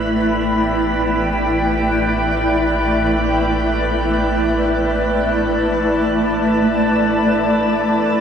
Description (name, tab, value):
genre	ambient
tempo	free time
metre	none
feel	none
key	unclear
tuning	A4 = 440 Hz
part	granular cloud pad	sustained chords	0.0-8.2 s	A3 to A5	-15 LUFS	equal	built-in reverb
part	deep rumbling drone	bass	0.0-8.2 s	A1	-26 LUFS	equal	built-in reverb
part	wind-like tuned noise texture	texture	0.0-8.2 s	B5	-30 LUFS	right 2 dB	built-in reverb
room	wet shimmer reverb, RT60 7.9 s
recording	none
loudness	-15 LUFS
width	side -8 dB against mid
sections	0.0-8.2 A section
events	fade-out on synth texture 0.0-8.2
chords	0.0 Em7/A